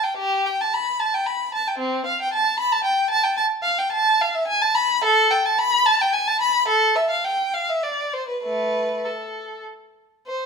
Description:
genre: classical, baroque-style suite movement for unaccompanied violin.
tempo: 93-116 BPM.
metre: 3/4.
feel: rubato.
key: A minor from 3.4 s.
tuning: A4 = 438 Hz.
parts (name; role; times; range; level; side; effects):
clear violin; solo; 0.0-10.5 s; A3 to B5; -19 LUFS; equal; none.
room: moderate large studio reverb, RT60 1.2 s.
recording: minimal, uncompressed stereo recording.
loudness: -18 LUFS.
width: side -5 dB against mid.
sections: 0.0-10.3 A section.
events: none.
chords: none.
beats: | 0.18 0.73 1.26 | 1.79 2.33 2.85 | 3.38 3.92 4.46 | 5.02 5.58 6.12 | 6.66 7.22 7.80 | 8.41 9.02 9.62 | 10.26.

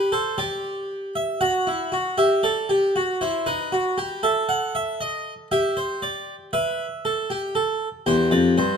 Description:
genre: classical, baroque-style 4-part fugue for harpsichord.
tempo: 58 BPM.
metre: 4/4.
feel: straight.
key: unclear.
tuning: A4 = 441 Hz.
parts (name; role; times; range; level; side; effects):
harpsichord; solo; 0.0-8.8 s; E2 to F#5; -21 LUFS; equal; none.
room: moderate recital hall reverb, RT60 1.3 s.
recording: close, detailed microphones.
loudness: -21 LUFS.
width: side -6 dB against mid.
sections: 0.0-8.8 A section.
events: none.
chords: 0.0 Em; 1.4 F#m7b5; 3.5 B7/D#; 5.5 Em/G; 7.5 Am.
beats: 0.38 1.41 2.44 | 3.46 4.49 5.51 6.53 | 7.55 8.57.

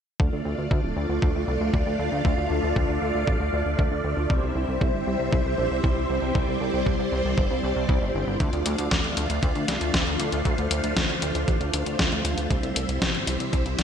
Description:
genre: italo disco.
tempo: 117 BPM.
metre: 4/4.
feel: straight.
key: D minor.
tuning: A4 = 440 Hz.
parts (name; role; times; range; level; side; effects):
string machine, full ensemble; sustained chords; 0.2-13.8 s; G3 to F5; -26 LUFS; equal; phaser, ensemble chorus.
chorused synth bass; bass; 0.2-13.8 s; D1 to D2; -28 LUFS; equal; none.
electronic kick drum; drums; 0.2-13.6 s; none; -24 LUFS; equal; none.
clean 12-bit digital drum machine; drums; 8.4-13.8 s; hi-hat, snare drum; -27 LUFS; left 1 dB; gated reverb.
room: moderate lush hall reverb, RT60 2.2 s.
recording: bright 1980s-style digital production.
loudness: -22 LUFS.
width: side -8 dB against mid.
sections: 0.2-13.8 A section.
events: none.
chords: 0.2 Dm; 4.3 C; 8.4 Dm; 12.5 C.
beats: | 0.20 0.71 1.22 1.74 | 2.25 2.76 3.27 3.79 | 4.30 4.81 5.33 5.84 | 6.35 6.86 7.38 7.89 | 8.40 8.91 9.43 9.94 | 10.45 10.97 11.48 11.99 | 12.51 13.02 13.53.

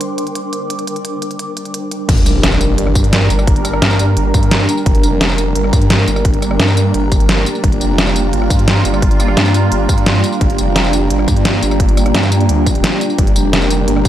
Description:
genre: dark technical drum and bass.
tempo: 173 BPM.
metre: 4/4.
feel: straight.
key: G minor.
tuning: A4 = 441 Hz.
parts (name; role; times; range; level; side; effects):
sweeping resonant pad; sustained chords; 0.0-14.1 s; G3 to C5; -19 LUFS; right 2 dB; chorus, sidechain pumping.
dubstep drum kit; drums; 0.0-14.1 s; crash cymbal, hi-hat, rim click, snare drum, tambourine; -17 LUFS; equal; studio reverb.
granular cloud pad; texture; 0.0-14.1 s; Bb3 to D6; -21 LUFS; right 1 dB; built-in reverb, sidechain pumping.
snarling distorted saw bass; bass; 2.1-14.0 s; F1 to G2; -16 LUFS; equal; distortion, overdrive, sidechain pumping.
electronic kick drum; drums; 2.1-14.1 s; none; -14 LUFS; equal; studio reverb.
impact; sound effects; 2.1-3.5 s; none; -20 LUFS; equal; none.
formant-sweep wobble bass; bass; 14.1 s; G2; -32 LUFS; equal; none.
room: light reverb.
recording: dark, warm production.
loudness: -11 LUFS.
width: side -12 dB against mid.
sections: 0.0-2.1 A section; 2.1-14.1 B section.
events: filter sweep on analog synth pad 0.0-2.1; drop 2.1-14.1; impact 2.1-3.5.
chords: 0.0 Gm.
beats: 0.01 0.35 | 0.70 1.05 1.39 1.74 | 2.09 2.43 2.78 3.13 | 3.47 3.82 4.17 4.51 | 4.86 5.21 5.55 5.90 | 6.25 6.60 6.94 7.29 | 7.64 7.98 8.33 8.68 | 9.02 9.37 9.72 10.06 | 10.41 10.76 11.11 11.45 | 11.80 12.14 12.49 12.84 | 13.19 13.53 13.88.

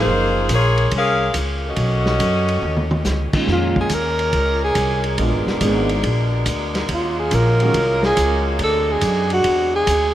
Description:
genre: jazz, big band swing.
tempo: 141 BPM.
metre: 4/4.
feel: swing 67% on 8ths.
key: Bb minor.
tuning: A4 = 440 Hz.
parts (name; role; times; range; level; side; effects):
clear saxophone section; melody; 0.0-3.0 s; Bb3 to F5; -20 LUFS; left 2 dB; tape echo.
warm concert grand piano; accompaniment; 0.0-0.5, 3.3-7.7 s; Bb2 to Ab4; -24 LUFS; right 2 dB; analog chorus.
upright bass; bass; 0.0-10.1 s; F1 to F#2; -21 LUFS; equal; none.
vintage drum kit; drums; 0.5-10.0 s; crash cymbal, hi-hat, kick drum, ride cymbal, snare drum, toms; -25 LUFS; equal; none.
breathy alto saxophone; melody; 3.5-10.1 s; F4 to Bb4; -19 LUFS; right 1 dB; tape echo.
clear saxophone section; sustained chords; 3.5-10.1 s; Bb2 to Bb4; -26 LUFS; left 1 dB; none.
room: moderate plate reverb, RT60 2.1 s.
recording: dreamy mix soaked in reverb.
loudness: -16 LUFS.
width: side -12 dB against mid.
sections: 0.0-3.5 A section; 3.5-10.1 B section.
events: drum fill 2.6-3.1; alto saxophone solo 3.5-10.1.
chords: 0.1 Gbmaj9; 1.8 B9; 3.5 Bbm9; 5.2 Bb7b9; 6.9 Ebm11; 8.6 D7#11.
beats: | 0.07 0.50 0.92 1.35 | 1.77 2.20 2.63 3.05 | 3.48 3.91 4.33 4.76 | 5.18 5.61 6.04 6.46 | 6.89 7.32 7.74 8.17 | 8.59 9.02 9.45 9.87.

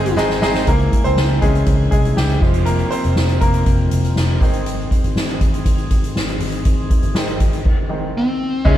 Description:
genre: piano-driven pop.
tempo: 120 BPM.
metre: 4/4.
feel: straight.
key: unclear.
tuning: A4 = 440 Hz.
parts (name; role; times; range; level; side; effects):
smooth overdriven lead guitar; melody; 0.0-0.1, 8.2-8.8 s; C4 to Ab4; -20 LUFS; left 1 dB; none.
dark French horn section; second line; 0.0-0.2, 8.6-8.8 s; Eb3 to Fb4; -39 LUFS; right 1 dB; none.
bright grand piano; accompaniment; 0.0-8.8 s; Ab2 to C5; -21 LUFS; equal; none.
tonewheel organ; sustained chords; 0.0-8.8 s; Db3 to Db6; -28 LUFS; left 2 dB; slow rotary speaker.
vintage muted picked electric bass; bass; 0.0-8.8 s; F1 to Db2; -19 LUFS; equal; none.
soft-mallet drum kit; drums; 0.1-8.8 s; crash cymbal, hi-hat, kick drum, snare drum; -18 LUFS; equal; none.
room: moderate stone room reverb, RT60 1.1 s.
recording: band playing live in one room.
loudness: -14 LUFS.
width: side -12 dB against mid.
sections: 0.7-8.7 A section.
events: drum fill 0.2-0.7; grand piano solo 0.7-8.7; stop 7.7-8.7.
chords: 0.0 Ab; 0.7 Dbm; 2.4 Fm; 4.4 Ab.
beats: 0.18 | 0.68 1.18 1.67 2.17 | 2.67 3.17 3.67 4.17 | 4.66 5.16 5.66 6.16 | 6.66 7.16 7.66 8.15 | 8.65.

